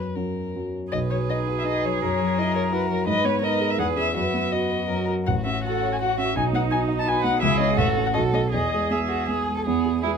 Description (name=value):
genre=quick classical-period movement for piano quartet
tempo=153-174 BPM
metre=3/4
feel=rubato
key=B major, E major from 5.3 s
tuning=A4 = 440 Hz
part: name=muted violin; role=melody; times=0.0-10.2 s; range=A#4 to A5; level=-27 LUFS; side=left 5 dB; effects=none
part: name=warm concert grand piano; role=accompaniment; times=0.0-10.2 s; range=A1 to D#5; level=-25 LUFS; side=equal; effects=none
part: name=muted cello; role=second line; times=0.9-10.1 s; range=B3 to B4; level=-28 LUFS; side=right 11 dB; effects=none
part: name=muted violin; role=second line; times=0.9-10.2 s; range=D#4 to B4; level=-29 LUFS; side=left 2 dB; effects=none
room=moderate studio reverb, RT60 0.5 s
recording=none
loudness=-21 LUFS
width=side -6 dB against mid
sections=0.9-9.7 A section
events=none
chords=0.0 F#; 0.9 B; 2.0 F#7; 3.1 G#m; 3.8 C#m7/E; 4.2 B/F#; 4.9 F#; 5.3 F#m/A; 6.4 B; 7.4 C#m; 7.8 F#m7/A; 8.1 B7(no3); 8.5 E